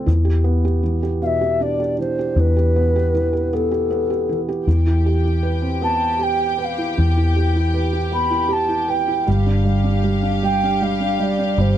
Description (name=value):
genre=six-eight pop ballad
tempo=52 BPM (dotted quarters)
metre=6/8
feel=straight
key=C major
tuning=A4 = 440 Hz
part: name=felt-muted upright piano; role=accompaniment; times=0.0-11.8 s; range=B2 to B4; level=-22 LUFS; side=right 3 dB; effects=none
part: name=vintage muted fingered electric bass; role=bass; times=0.0-11.8 s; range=G1 to E2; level=-19 LUFS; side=left 1 dB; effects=none
part: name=mellow alto ocarina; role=melody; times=1.2-11.8 s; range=A4 to B5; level=-20 LUFS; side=left 1 dB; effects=none
part: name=dark studio string section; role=sustained chords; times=4.7-11.8 s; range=G4 to G5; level=-27 LUFS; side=left 2 dB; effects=none
room=small room ambience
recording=dry, close 1970s-style studio recording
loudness=-16 LUFS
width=side -11 dB against mid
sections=0.0-11.8 A section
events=none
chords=0.1 Em7; 4.7 Cmaj7/E; 9.3 G7(no3)